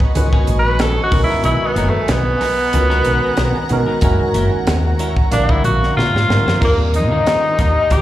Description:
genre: electric jazz fusion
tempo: 93 BPM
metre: 4/4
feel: swing 54% on 16ths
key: unclear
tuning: A4 = 441 Hz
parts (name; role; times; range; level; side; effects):
- granular cloud pad; sustained chords; 0.0-8.0 s; G4 to D6; -26 LUFS; equal; built-in reverb
- clean electric guitar; stabs; 0.0-8.0 s; D#3 to B#4; -28 LUFS; left 2 dB; lush chorus, slapback echo
- crisp fusion drum kit; drums; 0.0-8.0 s; crash cymbal, hi-hat, kick drum, snare drum; -19 LUFS; equal; none
- tine electric piano; accompaniment; 0.2-7.7 s; D3 to E#5; -22 LUFS; right 1 dB; medium stereo tremolo, analog chorus, slapback echo
- woody fretless electric bass; bass; 0.2-8.0 s; F#1 to Eb3; -17 LUFS; equal; ensemble chorus
- clear tenor saxophone; melody; 0.6-8.0 s; A3 to B4; -18 LUFS; equal; slapback echo
- breathy tenor saxophone; second line; 6.6-8.0 s; Bb3 to G4; -21 LUFS; left 3 dB; slapback echo
room: studio reverb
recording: live gig heard through the venue's PA, club reverb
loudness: -13 LUFS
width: side -14 dB against mid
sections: 0.0-6.6 A section; 6.6-8.0 B section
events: tenor saxophone solo 0.0-6.6; drum fill 6.0-6.6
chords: 0.0 Amaj9#11 (rootless); 1.1 G#m9; 4.0 F#7; 5.3 A#9; 6.6 Ebmaj9

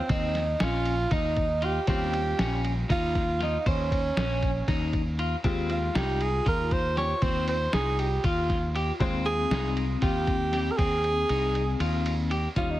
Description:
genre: progressive instrumental, band music in an uneven meter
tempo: 236 BPM (eighths)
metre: 7/8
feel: straight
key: unclear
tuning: A4 = 439 Hz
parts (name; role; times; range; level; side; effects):
- breathy tenor saxophone; melody; 0.0-12.8 s; C4 to Db5; -29 LUFS; right 2 dB; tape echo
- clear concert grand piano; accompaniment; 0.0-12.8 s; G3 to C5; -38 LUFS; left 4 dB; plate reverb
- electric guitar at the edge of break-up; arpeggios; 0.1-12.8 s; C4 to C5; -34 LUFS; left 3 dB; plate reverb, tape echo
- mellow fretless electric bass; bass; 0.1-12.8 s; Bb1 to Eb2; -29 LUFS; equal; none
- lo-fi sampler-style drum kit; drums; 0.1-12.7 s; hi-hat, kick drum, ride cymbal, snare drum; -31 LUFS; equal; none
- vibraphone with soft mallets; second line; 5.5-12.3 s; C4 to F4; -35 LUFS; left 5 dB; plate reverb
room: light reverb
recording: heavily compressed radio sound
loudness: -24 LUFS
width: side -14 dB against mid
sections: 0.0-12.6 A section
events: kick and snare drop out 11.0-12.6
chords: 0.0 Eb13; 5.4 Fmadd9

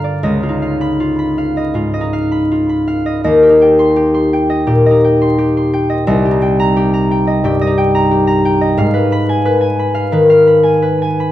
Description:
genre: classical, solo harp piece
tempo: 77-90 BPM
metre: 4/4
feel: rubato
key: Eb major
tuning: A4 = 440 Hz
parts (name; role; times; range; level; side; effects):
- concert harp; solo; 0.0-11.3 s; C2 to C6; -11 LUFS; left 1 dB; none
room: moderate stone room reverb, RT60 1.2 s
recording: vinyl crackle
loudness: -11 LUFS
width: side -13 dB against mid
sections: 0.0-11.3 A section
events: none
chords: 0.2 Db9; 3.3 Eb6; 6.1 Cm7; 8.8 Abm6

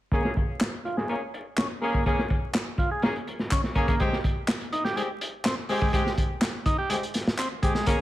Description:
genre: breakbeat, breaks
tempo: 124 BPM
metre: 4/4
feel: straight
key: Bb dorian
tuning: A4 = 440 Hz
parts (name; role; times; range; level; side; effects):
- combo organ; riff; 0.1-8.0 s; Ab3 to Ab4; -30 LUFS; equal; tube saturation, low-pass filter, digital delay
- clear horn section; stabs; 0.1-8.0 s; Ab3 to Ab4; -31 LUFS; left 1 dB; low-pass filter, digital delay
- crunchy breakbeat drum kit; drums; 0.1-8.0 s; hi-hat, kick drum, snare drum; -26 LUFS; equal; low-pass filter on kick, low-pass filter on hats, low-pass filter on snare, low-pass filter on room
- electronic handclaps; drums; 0.6-7.5 s; none; -33 LUFS; equal; none
room: light reverb, small room reverb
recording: vinyl crackle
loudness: -24 LUFS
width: side -15 dB against mid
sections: 0.1-8.0 A section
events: filter sweep on drum 0.1-8.0; filter sweep on transistor combo organ 0.1-8.0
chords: 0.1 Bbm7; 4.0 Abmaj7

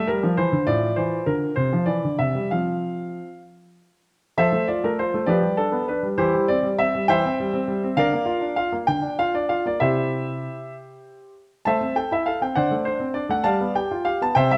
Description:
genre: classical-period piano sonatina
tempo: 66 BPM (dotted quarters)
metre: 6/8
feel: straight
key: F major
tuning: A4 = 441 Hz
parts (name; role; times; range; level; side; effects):
- clear concert grand piano; solo; 0.0-14.6 s; A2 to A5; -23 LUFS; equal; none
room: moderate recital hall reverb, RT60 1.4 s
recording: dark, warm production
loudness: -23 LUFS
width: mono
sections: 0.0-4.4 A section; 4.4-14.6 A section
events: none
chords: 0.0 Dm11; 0.7 F/A; 1.6 C; 2.5 F5; 4.4 F; 5.3 G7/F; 6.2 C/E; 8.0 Bb/D; 9.8 C; 11.6 Am; 12.6 D5; 13.5 G7

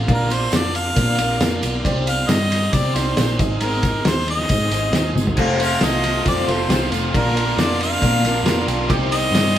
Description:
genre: folk rock and heartland rock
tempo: 136 BPM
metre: 4/4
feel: straight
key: unclear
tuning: A4 = 444 Hz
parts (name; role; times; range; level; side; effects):
- picked twelve-string acoustic guitar; accompaniment; 0.0-9.6 s; F2 to Ab4; -27 LUFS; left 3 dB; none
- tonewheel organ; sustained chords; 0.0-9.6 s; D4 to Eb5; -35 LUFS; right 1 dB; none
- hollow-body short-scale picked electric bass; bass; 0.0-9.6 s; F1 to C3; -23 LUFS; equal; none
- clear harmonica; melody; 0.1-9.6 s; Bb4 to F5; -23 LUFS; equal; none
- clear grand piano; accompaniment; 0.1-9.6 s; D4 to D6; -30 LUFS; right 2 dB; none
- cloth-damped thuddy drum kit; drums; 0.1-9.6 s; crash cymbal, kick drum, ride cymbal, snare drum, toms; -20 LUFS; equal; none
- tambourine; percussion; 0.1-9.5 s; none; -36 LUFS; right 6 dB; none
- overdriven electric guitar; riff; 5.4-9.6 s; F2 to G4; -24 LUFS; right 1 dB; none
room: moderate stone room reverb, RT60 1.2 s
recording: band playing live in one room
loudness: -16 LUFS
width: side -11 dB against mid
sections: 0.0-9.6 A section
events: drum fill 5.2; grand piano fill 8.2-8.9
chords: 0.1 Bb; 1.9 Cmadd9; 3.4 Ab; 5.4 Fadd9; 7.1 Bb; 8.9 Cmadd9

